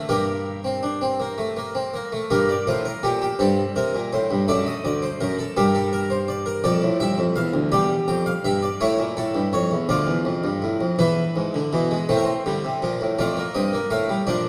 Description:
classical, baroque-style 4-part fugue for harpsichord; 55 BPM (dotted quarters); 6/8; straight; G minor; A4 = 442 Hz
harpsichord; solo; 0.0-14.5 s; D2 to G5; -23 LUFS; equal
wet concert hall reverb, RT60 2.1 s; -23 LUFS; mono
0.0-2.3 A section; 2.3-11.0 B section; 11.0-14.5 A section
0.1 Gm; 3.4 Gmadd11; 4.5 D7; 5.6 Gm; 6.6 Dm/F; 7.7 Em7; 8.8 A7; 9.9 Dm; 11.0 E7; 12.1 Am; 13.2 F7

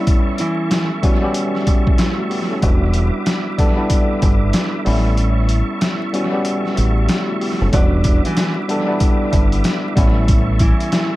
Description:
hip hop, boom-bap hip-hop; 94 BPM; 4/4; swing 62% on 16ths; E dorian; A4 = 441 Hz
tine electric piano; accompaniment; 0.0-11.2 s; G3 to A4; -20 LUFS; left 1 dB; cassette tape, high-pass filter, low-pass filter, analog delay
tonewheel organ; sustained chords; 0.0-11.2 s; E4 to D6; -27 LUFS; right 2 dB; chorus vibrato, fast rotary speaker, high-pass filter, low-pass filter
trip hop sampler-style drum kit; drums; 0.1-11.1 s; hi-hat, kick drum, snare drum; -17 LUFS; equal; analog delay
nylon-string guitar; melody; 0.4-0.9, 7.7-11.1 s; E3 to D5; -23 LUFS; right 1 dB; high-pass filter, low-pass filter, analog delay
deep dub fingered electric bass; bass; 2.6-10.7 s; E1 to A1; -16 LUFS; equal
digital ambience; echo-heavy mix, vinyl crackle; -14 LUFS; side -17 dB against mid
0.0-7.7 A section; 7.7-11.2 B section
break 0.0-2.6; kick muted 5.2-7.7
0.0 A7; 2.6 Em7; 4.9 A7; 7.7 Em7; 10.0 A7

